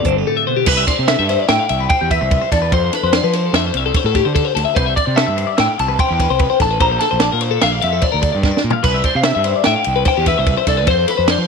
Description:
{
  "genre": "math rock and midwest emo",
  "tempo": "147 BPM",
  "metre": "5/4",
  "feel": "straight",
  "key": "C major",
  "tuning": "A4 = 440 Hz",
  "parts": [
    { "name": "twelve-string electric guitar", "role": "accompaniment", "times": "0.0-2.7 s", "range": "G2 to G4", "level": "-25 LUFS", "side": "right 14 dB", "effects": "none" },
    { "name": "twelve-string electric guitar", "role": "arpeggios", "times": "0.0-11.5 s", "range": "G4 to F5", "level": "-18 LUFS", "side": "left 12 dB", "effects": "phaser" },
    { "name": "compact cocktail drum kit", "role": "drums", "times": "0.0-11.4 s", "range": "crash cymbal, hi-hat, kick drum, ride cymbal, snare drum, toms", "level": "-18 LUFS", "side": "right 2 dB", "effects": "none" },
    { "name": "fuzz fingered electric bass", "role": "bass", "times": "0.1-11.5 s", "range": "G1 to F3", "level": "-20 LUFS", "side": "right 2 dB", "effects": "overdrive" },
    { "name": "clean electric guitar", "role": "melody", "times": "0.7-11.5 s", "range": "B4 to Bb5", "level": "-19 LUFS", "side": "right 1 dB", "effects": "ensemble chorus, slapback echo" }
  ],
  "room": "light reverb, studio reverb",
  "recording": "1960s-style stereo with parts hard left and right",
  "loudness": "-13 LUFS",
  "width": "side -5 dB against mid",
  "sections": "0.7-11.5 A section",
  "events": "drum fill 8.4-8.8",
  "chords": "0.0 G7sus4; 0.7 Cmaj7; 6.8 Bbmaj7; 8.8 Cmaj7"
}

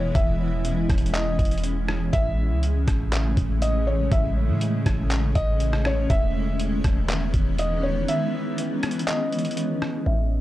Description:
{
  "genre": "hip hop, atmospheric cloud-rap",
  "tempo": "121 BPM",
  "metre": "4/4",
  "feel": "half-time",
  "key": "unclear",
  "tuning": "A4 = 440 Hz",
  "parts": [
    { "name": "felt-muted upright piano", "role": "melody", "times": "0.0-10.4 s", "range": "C#5 to E5", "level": "-30 LUFS", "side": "equal", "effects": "low-pass filter, tape echo" },
    { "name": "granular cloud pad", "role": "sustained chords", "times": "0.0-10.4 s", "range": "B2 to E4", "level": "-27 LUFS", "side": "equal", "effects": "built-in reverb, sidechain pumping, low-pass filter" },
    { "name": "warm 808-style bass", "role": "bass", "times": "0.0-10.4 s", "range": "E1 to A2", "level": "-24 LUFS", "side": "equal", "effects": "none" },
    { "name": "trip hop sampler-style drum kit", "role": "drums", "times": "0.1-9.9 s", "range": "handclaps, hi-hat, kick drum, rim click", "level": "-25 LUFS", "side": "equal", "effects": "none" }
  ],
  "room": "digital ambience",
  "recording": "dry, gritty hardware recording, cassette tape",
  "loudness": "-21 LUFS",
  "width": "side -15 dB against mid",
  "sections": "0.0-10.1 A section",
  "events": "break 8.1-10.1",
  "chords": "0.0 Emaj7; 2.1 Amaj7; 6.1 Emaj7"
}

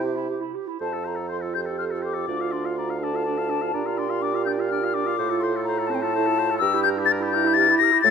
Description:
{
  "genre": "quick classical-period movement for wind quintet",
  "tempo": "83 BPM (dotted quarters)",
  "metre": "6/8",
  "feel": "rubato",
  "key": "F major",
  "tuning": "A4 = 440 Hz",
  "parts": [
    { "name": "mellow hollow silver concert flute", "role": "melody", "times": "0.0-8.1 s", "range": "G5 to Bb6", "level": "-23 LUFS", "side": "left 10 dB", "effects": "none" },
    { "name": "warm oboe", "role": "second line", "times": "0.0-8.1 s", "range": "G4 to F5", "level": "-35 LUFS", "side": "left 2 dB", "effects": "none" },
    { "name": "mellow clarinet", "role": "accompaniment", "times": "0.0-8.1 s", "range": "A3 to A4", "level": "-30 LUFS", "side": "right 10 dB", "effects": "none" },
    { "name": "warm French horn", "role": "accompaniment", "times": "0.0-8.1 s", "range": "C4 to A4", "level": "-28 LUFS", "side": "right 3 dB", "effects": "none" },
    { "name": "warm bassoon", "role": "bass", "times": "0.0-8.1 s", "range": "D2 to C3", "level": "-29 LUFS", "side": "right 3 dB", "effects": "none" }
  ],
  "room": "light reverb",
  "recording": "close, detailed microphones",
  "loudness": "-21 LUFS",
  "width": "side -6 dB against mid",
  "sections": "0.8-8.1 A section",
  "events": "none",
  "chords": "0.0 C; 0.8 F; 2.3 Dm; 3.7 Bb; 5.2 F/A; 6.6 Edim/G"
}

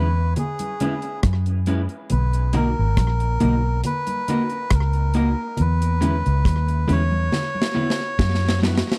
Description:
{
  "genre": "roots reggae",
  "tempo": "69 BPM",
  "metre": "4/4",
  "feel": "straight",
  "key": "B major",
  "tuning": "A4 = 440 Hz",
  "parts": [
    { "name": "melodica", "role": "melody", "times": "0.0-8.6 s", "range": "G#4 to C#5", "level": "-30 LUFS", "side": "equal", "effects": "dub echo" },
    { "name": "electric guitar at the edge of break-up", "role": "accompaniment", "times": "0.0-8.8 s", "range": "G#3 to B4", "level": "-29 LUFS", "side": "equal", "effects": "spring reverb, dub echo" },
    { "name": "vintage muted fingered electric bass", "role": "bass", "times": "0.0-8.8 s", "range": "G#1 to F#2", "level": "-22 LUFS", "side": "equal", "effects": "none" },
    { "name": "deep reggae drum kit", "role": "drums", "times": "0.4-9.0 s", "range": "hi-hat, kick drum, rim click, snare drum", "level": "-25 LUFS", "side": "equal", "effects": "slapback echo" },
    { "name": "congas", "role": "percussion", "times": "0.4-8.8 s", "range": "none", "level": "-31 LUFS", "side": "equal", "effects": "none" }
  ],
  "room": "little or no reverb",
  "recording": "dry, close 1970s-style studio recording",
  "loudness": "-21 LUFS",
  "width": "mono",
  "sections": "0.0-9.0 A section",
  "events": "drum fill 7.3-9.0",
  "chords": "0.0 E6; 2.1 Bmaj7; 5.6 E6; 7.3 F#7sus4"
}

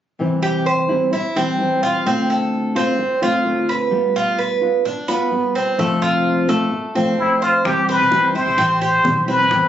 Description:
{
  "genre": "latin, Cuban son and guajira",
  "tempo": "129 BPM",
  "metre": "4/4",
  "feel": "straight",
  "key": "C major",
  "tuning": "A4 = 439 Hz",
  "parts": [
    { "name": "nylon-string guitar", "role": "accompaniment", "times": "0.2-9.7 s", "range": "F2 to F4", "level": "-21 LUFS", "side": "left 2 dB", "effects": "none" },
    { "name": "Cuban tres", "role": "arpeggios", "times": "0.4-9.5 s", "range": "A3 to C5", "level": "-19 LUFS", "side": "right 3 dB", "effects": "none" },
    { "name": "trumpet with plunger mute", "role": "melody", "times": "7.2-9.7 s", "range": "E4 to C5", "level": "-15 LUFS", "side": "left 1 dB", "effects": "none" },
    { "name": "upright bass", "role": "bass", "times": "7.6-9.7 s", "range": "A1 to C3", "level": "-26 LUFS", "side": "equal", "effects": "none" },
    { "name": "bongos", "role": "percussion", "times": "7.7-9.7 s", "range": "none", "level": "-26 LUFS", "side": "left 4 dB", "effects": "none" }
  ],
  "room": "moderate large studio reverb, RT60 0.9 s",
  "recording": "recorded on a phone in the room, studio ambience, compression, nothing above 7.7 kHz",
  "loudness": "-16 LUFS",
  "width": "side -10 dB against mid",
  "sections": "0.2-7.6 A section; 7.6-9.7 B section",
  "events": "none",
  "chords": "0.2 C; 2.1 Dm7; 3.9 G7; 5.8 F; 7.6 C"
}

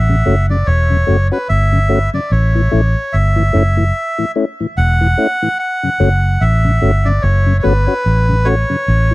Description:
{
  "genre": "roots reggae",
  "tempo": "73 BPM",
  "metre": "4/4",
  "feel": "swing 59% on 16ths",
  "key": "unclear",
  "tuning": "A4 = 440 Hz",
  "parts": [
    { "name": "melodica", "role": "melody", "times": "0.0-9.1 s", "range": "B4 to F#5", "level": "-18 LUFS", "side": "equal", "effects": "tape echo" },
    { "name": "vintage muted fingered electric bass", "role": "bass", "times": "0.0-9.1 s", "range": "E1 to A1", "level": "-12 LUFS", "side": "equal", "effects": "none" },
    { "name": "mellow tonewheel organ", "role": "accompaniment", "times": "0.1-9.1 s", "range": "F#2 to F#4", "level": "-17 LUFS", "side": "left 2 dB", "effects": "overdrive, chorus vibrato, slow rotary speaker" }
  ],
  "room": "little or no reverb",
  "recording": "dry, close 1970s-style studio recording",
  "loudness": "-12 LUFS",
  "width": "side -19 dB against mid",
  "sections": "0.0-9.1 A section",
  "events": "none",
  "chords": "0.0 F#m"
}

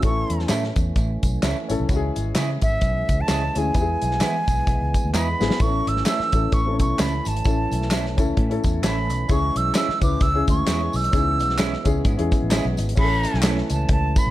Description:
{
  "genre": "uptempo 1960s-style soul",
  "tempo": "130 BPM",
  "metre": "4/4",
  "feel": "swing 58% on 8ths",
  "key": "A major",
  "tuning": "A4 = 442 Hz",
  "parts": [
    { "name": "dark upright piano", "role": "accompaniment", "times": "0.0-13.7 s", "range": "B3 to B4", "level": "-27 LUFS", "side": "left 5 dB", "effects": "none" },
    { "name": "tonewheel organ", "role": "sustained chords", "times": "0.0-14.3 s", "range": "E3 to C#4", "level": "-32 LUFS", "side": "right 1 dB", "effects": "overdrive, chorus vibrato, slow rotary speaker" },
    { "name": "vintage muted fingered electric bass", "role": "bass", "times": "0.0-14.3 s", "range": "G#1 to E3", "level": "-24 LUFS", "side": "equal", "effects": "none" },
    { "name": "warm soul drum kit", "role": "drums", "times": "0.0-14.3 s", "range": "crash cymbal, hi-hat, kick drum, snare drum", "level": "-23 LUFS", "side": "equal", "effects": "none" },
    { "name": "tambourine and handclaps", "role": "percussion", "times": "0.0-14.3 s", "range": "none", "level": "-34 LUFS", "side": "left 1 dB", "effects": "none" },
    { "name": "breathy silver concert flute", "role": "melody", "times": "0.1-14.3 s", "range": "E5 to E6", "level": "-25 LUFS", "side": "right 2 dB", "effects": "none" },
    { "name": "electric guitar through a small old amp", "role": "stabs", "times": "0.5-13.6 s", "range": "G#3 to A4", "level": "-30 LUFS", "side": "right 5 dB", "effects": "tape echo" }
  ],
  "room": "small room ambience",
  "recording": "dark, warm production",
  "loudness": "-19 LUFS",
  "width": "side -15 dB against mid",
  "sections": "0.0-5.6 A section; 5.6-13.0 B section; 13.0-14.3 C section",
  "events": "drum fill 5.1-5.6",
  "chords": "0.0 A; 1.9 C#m; 5.6 A; 9.3 C#m; 13.0 A"
}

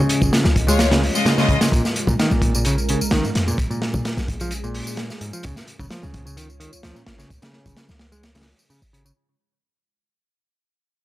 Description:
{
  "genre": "breakbeat, breaks",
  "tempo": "129 BPM",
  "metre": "4/4",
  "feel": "straight",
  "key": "unclear",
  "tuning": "A4 = 440 Hz",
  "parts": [
    { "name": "dark analog pad", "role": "sustained chords", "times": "0.0-9.1 s", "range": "Ab3 to Eb5", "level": "-29 LUFS", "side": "right 1 dB", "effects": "chorus, sidechain pumping" },
    { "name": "modern bright picked electric bass", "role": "riff", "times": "0.0-9.1 s", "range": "Ab2 to Ab3", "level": "-24 LUFS", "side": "equal", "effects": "overdrive, analog delay" },
    { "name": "crunchy breakbeat drum kit", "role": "drums", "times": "0.1-9.1 s", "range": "hi-hat, kick drum, snare drum", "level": "-22 LUFS", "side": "equal", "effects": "none" },
    { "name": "warm 808-style bass", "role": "bass", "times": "0.2-9.1 s", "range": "Ab1 to Bb2", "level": "-23 LUFS", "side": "equal", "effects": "none" },
    { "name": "tambourine", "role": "drums", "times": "0.2-9.1 s", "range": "none", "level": "-31 LUFS", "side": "left 1 dB", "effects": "none" },
    { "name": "congas", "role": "percussion", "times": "0.2-8.0 s", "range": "none", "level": "-28 LUFS", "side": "left 2 dB", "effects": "none" },
    { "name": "bright chamber string section", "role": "stabs", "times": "0.7-1.6 s", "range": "Ab3 to Eb5", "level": "-23 LUFS", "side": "left 3 dB", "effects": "analog delay" }
  ],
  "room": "little or no reverb",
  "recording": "dry, gritty hardware recording",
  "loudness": "-17 LUFS",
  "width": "side -15 dB against mid",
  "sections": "0.0-9.2 A section",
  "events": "fade-out 0.0-9.2",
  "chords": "0.0 Db; 1.7 Bbm7; 5.4 Db"
}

